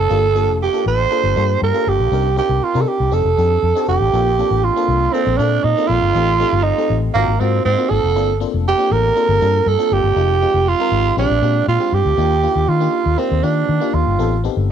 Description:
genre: polished 1980s jazz-funk pop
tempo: 119 BPM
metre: 4/4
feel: straight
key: Bb major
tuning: A4 = 438 Hz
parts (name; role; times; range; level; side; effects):
- growling tenor saxophone; melody; 0.0-14.4 s; Bb3 to C5; -16 LUFS; right 7 dB; cassette tape
- FM electric piano; accompaniment; 0.0-14.7 s; Ab3 to Bb4; -23 LUFS; left 14 dB; lush chorus
- vintage muted fingered electric bass; bass; 0.0-14.7 s; F1 to Eb3; -18 LUFS; left 2 dB; none
room: moderate booth ambience, RT60 0.2 s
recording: home recording on cassette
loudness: -14 LUFS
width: side -8 dB against mid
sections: 0.0-4.1 A section; 4.1-14.7 A section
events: none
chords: 0.1 Gm9; 2.1 Cm9; 3.1 F13; 4.1 Bbmaj9; 6.1 Am7b5; 7.1 Ab13; 8.2 Gm11; 10.2 Fm7; 11.2 Bb13; 12.2 Ebmaj9; 14.2 Am7b5

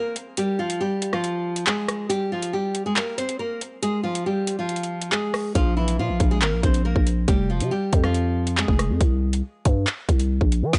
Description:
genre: hip hop, drill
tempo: 139 BPM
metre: 4/4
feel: half-time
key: F harmonic minor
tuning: A4 = 440 Hz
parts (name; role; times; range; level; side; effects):
- nylon-string guitar; melody; 0.0-9.0 s; E3 to C5; -27 LUFS; equal; analog delay
- drill drum kit; drums; 0.2-10.8 s; handclaps, hi-hat, kick drum, rim click, snare drum; -25 LUFS; equal; none
- growling 808-style bass; bass; 5.6-10.7 s; F1 to E3; -24 LUFS; equal; none
room: digital ambience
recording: dry, gritty hardware recording, nothing above 10.6 kHz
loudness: -23 LUFS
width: mono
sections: 0.0-10.8 A section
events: break 0.0-5.6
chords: 0.4 Fmadd9; 2.1 C5; 3.8 Fmadd9; 5.6 Bb5; 7.3 Fmadd9; 9.0 N.C.

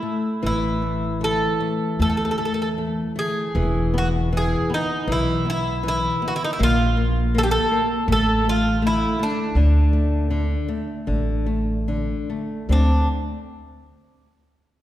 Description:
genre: fado-style ballad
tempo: 78 BPM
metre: 4/4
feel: uneven beats, rubato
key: unclear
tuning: A4 = 440 Hz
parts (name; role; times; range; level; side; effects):
- Greek bouzouki; melody; 0.0-13.1 s; D4 to A4; -24 LUFS; right 1 dB; none
- flamenco guitar; accompaniment; 0.0-13.1 s; D3 to C#4; -24 LUFS; left 2 dB; none
- upright bass; bass; 0.4-13.1 s; E1 to E2; -22 LUFS; equal; none
room: wet concert hall reverb, RT60 1.8 s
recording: heard from further back in the room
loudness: -19 LUFS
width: side -13 dB against mid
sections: 0.0-12.7 A section; 12.7-14.8 B section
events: none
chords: 0.0 A5; 3.5 E5; 6.6 Bb5; 8.1 Dmadd9/A; 9.6 D5

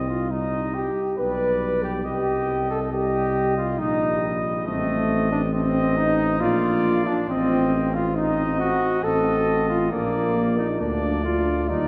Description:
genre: classical, brass quintet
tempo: 68 BPM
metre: 3/4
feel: straight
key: Bb major from 4.7 s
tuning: A4 = 439 Hz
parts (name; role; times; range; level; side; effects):
- warm trumpet; melody; 0.0-11.9 s; D5 to Eb5; -31 LUFS; equal; none
- warm flugelhorn; second line; 0.0-11.9 s; A3 to B4; -30 LUFS; equal; none
- dark French horn; accompaniment; 0.0-11.9 s; A3 to B4; -27 LUFS; equal; none
- warm trombone; accompaniment; 0.0-11.9 s; G3 to C4; -33 LUFS; equal; none
- dark bass trombone; bass; 0.0-11.9 s; A1 to Eb2; -28 LUFS; equal; none
room: wet church reverb, RT60 3.3 s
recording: heard from further back in the room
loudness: -23 LUFS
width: mono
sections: 0.0-11.9 A section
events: none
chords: 0.0 Cm; 1.2 G/B; 2.1 Cm; 4.7 Adim; 6.4 Bb; 7.3 Adim; 9.9 Bb

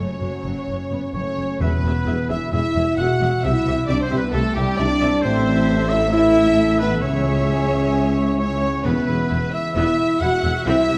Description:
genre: cinematic, heroic adventure film score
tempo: 132 BPM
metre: 4/4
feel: straight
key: E mixolydian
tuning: A4 = 438 Hz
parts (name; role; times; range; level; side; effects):
- warm symphonic violin section; melody; 0.0-11.0 s; G4 to F#5; -31 LUFS; equal; none
- rich studio violin section; second line; 0.0-11.0 s; G4 to F#5; -32 LUFS; equal; none
- rich symphonic viola section; accompaniment; 0.0-11.0 s; F#3 to E5; -32 LUFS; equal; none
- mellow French horn section; sustained chords; 0.0-11.0 s; G3 to F#4; -24 LUFS; equal; none
- concert harp; arpeggios; 0.0-11.0 s; E2 to E6; -31 LUFS; equal; none
- clear symphonic double bass section; bass; 0.0-11.0 s; E1 to C#2; -30 LUFS; equal; none
- rich symphonic cello section; bass; 0.0-11.0 s; C#2 to C3; -30 LUFS; equal; none
- clear oboe; second line; 1.1-11.0 s; G4 to F#5; -30 LUFS; equal; none
- dark tuba; bass; 1.6-11.0 s; E1 to C#2; -29 LUFS; equal; none
- timpani; percussion; 1.6-2.3 s; E2; -28 LUFS; equal; none
- mellow hollow small flute group; second line; 7.5-8.8 s; G#5 to C#6; -33 LUFS; equal; none
room: wet scoring stage reverb, RT60 1.9 s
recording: none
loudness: -20 LUFS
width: mono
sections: 0.0-1.6 A section; 1.6-11.0 B section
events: none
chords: 0.0 F#m; 1.6 E; 3.4 C; 5.2 Am; 7.0 C#m; 8.9 E

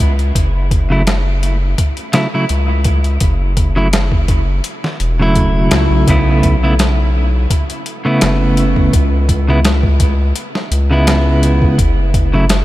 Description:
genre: trip hop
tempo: 84 BPM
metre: 4/4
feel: swing 54% on 16ths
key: F# minor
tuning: A4 = 440 Hz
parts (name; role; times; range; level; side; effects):
- round analog bass; bass; 0.0-12.6 s; E1 to C#2; -14 LUFS; equal; none
- boom bap sampler-style drum kit; drums; 0.0-12.6 s; hi-hat, kick drum, snare drum; -16 LUFS; equal; none
- clean electric guitar; accompaniment; 0.9-12.4 s; C#3 to E4; -16 LUFS; equal; tremolo, tape echo
room: light reverb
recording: none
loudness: -11 LUFS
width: side -16 dB against mid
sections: 0.0-6.1 A section; 6.1-12.6 B section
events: none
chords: 0.4 F#m7; 6.1 B9sus4; 8.9 C#m7; 11.8 N.C.

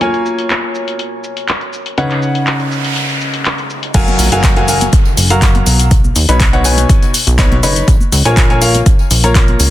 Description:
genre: piano house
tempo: 122 BPM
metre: 4/4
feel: straight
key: F# major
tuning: A4 = 439 Hz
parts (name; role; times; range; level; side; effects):
- clear grand piano; riff; 0.0-9.7 s; B2 to B5; -16 LUFS; left 1 dB; sidechain pumping, ping-pong delay
- punchy analog drum machine; drums; 0.0-9.7 s; crash cymbal, handclaps, hi-hat, shaker; -17 LUFS; left 2 dB; low-pass filter on hats, low-pass filter on perc, low-pass filter on snare, low-pass filter on cymbals, low-pass filter on room
- deep dark ambient pad; texture; 0.0-3.9 s; C#4 to A#5; -28 LUFS; equal; chorus, built-in reverb, sidechain pumping
- noise sweep and downlifter; sound effects; 2.3-7.9 s; none; -23 LUFS; right 1 dB; none
- plucky analog bass; bass; 3.9-9.7 s; F#1 to D#2; -14 LUFS; equal; sidechain pumping
- electronic kick drum; drums; 3.9-9.5 s; none; -11 LUFS; equal; none
- tambourine and congas; percussion; 3.9-9.7 s; none; -24 LUFS; right 4 dB; none
room: digital ambience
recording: dense, heavily limited modern master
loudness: -10 LUFS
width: side -14 dB against mid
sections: 0.0-3.9 A section; 3.9-9.7 B section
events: noise sweep 2.3-3.9; drop 3.9-9.7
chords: 0.0 A#m7; 2.0 C#9sus4; 3.9 F#maj9; 5.9 B69; 7.9 A#m7

